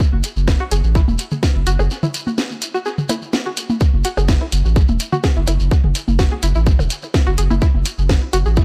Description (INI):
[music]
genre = minimal techno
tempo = 126 BPM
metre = 4/4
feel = straight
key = F# minor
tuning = A4 = 440 Hz
[part]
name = electronic kick drum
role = drums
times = 0.0-8.6 s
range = none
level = -17 LUFS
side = equal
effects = none
[part]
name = shekere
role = percussion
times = 0.0-8.6 s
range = none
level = -32 LUFS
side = equal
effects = dub echo
[part]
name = saturated sub bass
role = bass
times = 0.1-8.6 s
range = E1 to A1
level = -19 LUFS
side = equal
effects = sidechain pumping
[part]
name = garage drum kit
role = drums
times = 0.2-8.4 s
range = hi-hat, snare drum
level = -26 LUFS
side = equal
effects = dub echo
[part]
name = electronic percussion blips and toms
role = percussion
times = 0.5-8.2 s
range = none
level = -26 LUFS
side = equal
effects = overdrive, analog delay
[part]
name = string-like resonator pluck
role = riff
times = 0.6-8.6 s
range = E4 to G#4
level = -28 LUFS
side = equal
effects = chorus, sidechain pumping, dub echo
[sound]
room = little or no reverb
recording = echo-heavy mix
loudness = -17 LUFS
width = mono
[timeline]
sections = 0.0-8.6 A section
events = break 1.9-3.8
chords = none